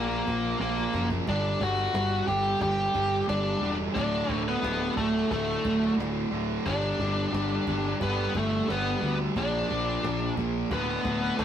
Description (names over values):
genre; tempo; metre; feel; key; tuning
quiet-loud alternative rock; 89 BPM; 4/4; straight; unclear; A4 = 441 Hz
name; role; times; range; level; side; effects
smooth overdriven lead guitar; melody; 0.0-11.4 s; A3 to G5; -28 LUFS; left 1 dB; none
fuzz guitar; riff; 0.0-11.4 s; D2 to Bb3; -35 LUFS; left 4 dB; distortion
fuzz guitar; riff; 0.0-11.4 s; D2 to Bb3; -31 LUFS; right 4 dB; distortion
fuzz picked electric bass; bass; 0.0-11.4 s; D1 to D2; -32 LUFS; equal; overdrive
cajon; drums; 0.3-11.4 s; none; -40 LUFS; left 1 dB; none
room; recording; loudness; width
moderate stone room reverb, RT60 0.9 s; rough rehearsal-room recording; -25 LUFS; side -9 dB against mid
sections
0.0-11.4 A section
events
drum fill 0.6-1.3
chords
0.0 Bb5; 1.3 G5; 4.0 D5; 6.7 G; 9.3 Bb; 10.7 D5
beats
0.60 | 1.27 1.95 2.62 3.29 | 3.96 4.63 5.30 5.98 | 6.65 7.33 8.00 8.67 | 9.35 10.03 10.70 11.38